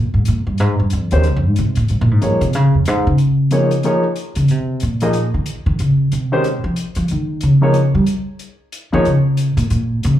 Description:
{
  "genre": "modal jazz",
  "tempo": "184 BPM",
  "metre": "4/4",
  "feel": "swing 61% on 8ths",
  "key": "Bb dorian",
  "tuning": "A4 = 435 Hz",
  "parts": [
    { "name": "upright bass", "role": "bass", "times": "0.0-10.2 s", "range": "Db2 to G3", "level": "-14 LUFS", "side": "equal", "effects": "none" },
    { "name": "hi-hat", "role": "drums", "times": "0.3-10.1 s", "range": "none", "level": "-34 LUFS", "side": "left 3 dB", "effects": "none" },
    { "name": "warm grand piano", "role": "accompaniment", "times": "1.1-9.1 s", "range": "Eb3 to Eb5", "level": "-18 LUFS", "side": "left 1 dB", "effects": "slapback echo" }
  ],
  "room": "small room ambience",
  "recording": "live gig heard through the venue's PA, club reverb",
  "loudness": "-14 LUFS",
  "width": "side -12 dB against mid",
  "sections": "0.0-10.2 A section",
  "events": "upright bass solo 0.0-10.2",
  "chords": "0.0 Bbm11"
}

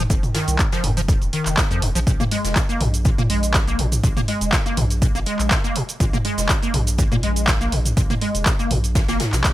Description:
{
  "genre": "acid house",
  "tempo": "122 BPM",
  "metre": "4/4",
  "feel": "swing 54% on 16ths",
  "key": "unclear",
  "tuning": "A4 = 440 Hz",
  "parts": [
    { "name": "acid bass, square", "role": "riff", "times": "0.0-9.5 s", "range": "F2 to Bb3", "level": "-24 LUFS", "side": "equal", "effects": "ensemble chorus, dub echo" },
    { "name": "round analog bass", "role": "bass", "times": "0.0-9.4 s", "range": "Eb1 to Bb2", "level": "-23 LUFS", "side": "equal", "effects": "sidechain pumping" },
    { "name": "electronic kick drum", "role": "drums", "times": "0.1-9.5 s", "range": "none", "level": "-20 LUFS", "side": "equal", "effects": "none" },
    { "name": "punchy analog drum machine", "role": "drums", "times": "0.1-9.5 s", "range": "cabasa, handclaps, hi-hat, toms", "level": "-23 LUFS", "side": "equal", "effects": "none" },
    { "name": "soft brush drum kit", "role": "drums", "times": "0.1-9.5 s", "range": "hi-hat, snare drum", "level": "-33 LUFS", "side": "left 1 dB", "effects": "sidechain pumping on hats, high-pass filter on hats, high-pass filter on snare, high-pass filter on room" }
  ],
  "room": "little or no reverb",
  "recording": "none",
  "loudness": "-17 LUFS",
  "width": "side -15 dB against mid",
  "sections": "0.0-9.5 A section",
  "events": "none",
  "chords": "0.0 F5; 2.1 Bb7(no3)"
}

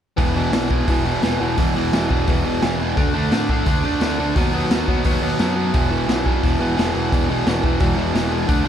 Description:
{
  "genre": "punk rock",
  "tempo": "173 BPM",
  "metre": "4/4",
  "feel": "straight",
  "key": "unclear",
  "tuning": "A4 = 439 Hz",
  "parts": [
    { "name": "overdriven semi-hollow guitar", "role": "riff", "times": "0.2-8.7 s", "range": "E2 to D4", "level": "-20 LUFS", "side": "right 1 dB", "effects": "none" },
    { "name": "fuzz picked electric bass", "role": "bass", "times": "0.2-8.7 s", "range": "E1 to A2", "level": "-25 LUFS", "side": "equal", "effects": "overdrive" },
    { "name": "raw garage drum kit", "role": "drums", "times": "0.2-8.6 s", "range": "hi-hat, kick drum, snare drum", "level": "-21 LUFS", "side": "equal", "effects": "none" }
  ],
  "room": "light reverb",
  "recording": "none",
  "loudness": "-17 LUFS",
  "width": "side -9 dB against mid",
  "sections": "0.2-8.7 A section",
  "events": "none",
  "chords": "0.2 E5; 3.0 D5; 4.4 B/D#; 5.7 E5"
}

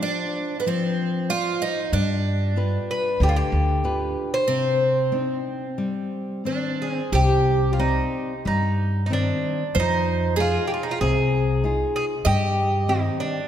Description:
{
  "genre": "fado-style ballad",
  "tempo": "88-98 BPM",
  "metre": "4/4",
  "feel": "rubato",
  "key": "C harmonic minor",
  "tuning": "A4 = 440 Hz",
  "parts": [
    { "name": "picked twelve-string acoustic guitar", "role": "second line", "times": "0.0-13.5 s", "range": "B3 to Eb5", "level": "-27 LUFS", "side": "right 4 dB", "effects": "none" },
    { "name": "nylon-string guitar", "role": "accompaniment", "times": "0.0-13.4 s", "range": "C3 to D5", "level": "-26 LUFS", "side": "left 3 dB", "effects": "none" },
    { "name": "upright bass", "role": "bass", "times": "1.9-13.1 s", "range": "C2 to G2", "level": "-23 LUFS", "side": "equal", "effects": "none" },
    { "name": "Irish bouzouki", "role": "melody", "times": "2.9-13.5 s", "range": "D4 to C5", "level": "-25 LUFS", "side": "equal", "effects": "none" }
  ],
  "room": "moderate concert hall reverb, RT60 2.5 s",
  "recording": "none",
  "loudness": "-20 LUFS",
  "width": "side -10 dB against mid",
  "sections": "0.0-7.1 A section; 7.1-13.5 B section",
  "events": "break 4.5-7.1",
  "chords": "0.0 Dm7; 1.9 G7; 4.5 Cmadd9; 9.8 Fm7; 12.3 Cm/G"
}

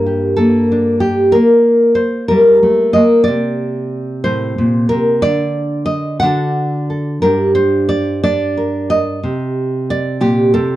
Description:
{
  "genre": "folk, solo fingerstyle acoustic guitar",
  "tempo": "61 BPM (dotted quarters)",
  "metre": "6/8",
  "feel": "rubato",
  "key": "G minor",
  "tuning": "A4 = 440 Hz",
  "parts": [
    { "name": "nylon-string guitar", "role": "solo", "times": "0.0-10.8 s", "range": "G2 to F#5", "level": "-12 LUFS", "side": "equal", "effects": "none" }
  ],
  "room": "light reverb",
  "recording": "dark, warm production",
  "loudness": "-12 LUFS",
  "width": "side -14 dB against mid",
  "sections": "0.0-10.8 A section",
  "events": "none",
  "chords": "0.0 Gm; 1.3 Gmadd9; 3.3 Amadd11; 5.2 N.C.; 6.2 D; 7.2 Gm; 9.2 Cm"
}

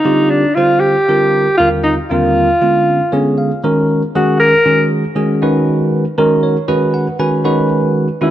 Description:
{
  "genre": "jazz",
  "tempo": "118 BPM",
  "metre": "4/4",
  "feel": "swing 55% on 16ths",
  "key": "F# major from 3.6 s",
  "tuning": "A4 = 439 Hz",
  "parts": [
    { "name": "breathy alto saxophone", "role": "melody", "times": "0.0-4.9, 8.2-8.3 s", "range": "D4 to A#4", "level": "-13 LUFS", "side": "equal", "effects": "slapback echo" },
    { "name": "bell-like tine electric piano", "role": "accompaniment", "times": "0.0-8.3 s", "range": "Eb2 to G#5", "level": "-13 LUFS", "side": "right 1 dB", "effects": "phaser" }
  ],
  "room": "moderate plate reverb, RT60 3.0 s",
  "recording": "none",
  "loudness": "-11 LUFS",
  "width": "side -12 dB against mid",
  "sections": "0.0-3.6 A section; 3.6-8.3 B section",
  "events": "tine electric piano fill 2.9-3.6, 6.2-7.7; alto saxophone solo 3.6-8.3",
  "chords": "0.0 Gm7; 1.6 Eb69; 2.6 Db7b9; 3.6 F#69; 5.4 B69"
}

